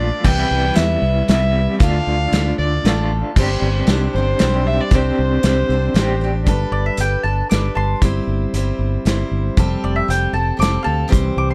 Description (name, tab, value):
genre	folk rock and heartland rock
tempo	116 BPM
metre	3/4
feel	straight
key	C major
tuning	A4 = 440 Hz
part	warm fiddle	melody	0.0-6.2 s	C5 to G5	-24 LUFS	equal	none
part	picked steel-string acoustic guitar	accompaniment	0.0-11.5 s	C3 to C5	-26 LUFS	equal	none
part	electric guitar through a small old amp	riff	0.0-6.5 s	G2 to G4	-26 LUFS	equal	tremolo
part	fingered electric bass	bass	0.0-11.5 s	F1 to E2	-22 LUFS	equal	none
part	loose indie drum kit	drums	0.2-11.2 s	crash cymbal, hi-hat, kick drum, snare drum	-21 LUFS	equal	none
part	mandolin	second line	6.7-11.5 s	D5 to D6	-24 LUFS	equal	none
room	little or no reverb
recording	dark, warm production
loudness	-17 LUFS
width	mono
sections	0.0-6.5 A section; 6.5-11.5 B section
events	mandolin solo 6.5-11.5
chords	0.3 Cmaj7; 1.8 Dm; 3.4 Gsus4; 4.9 Csus2; 6.5 Gadd9; 8.0 C/G; 9.6 Fadd9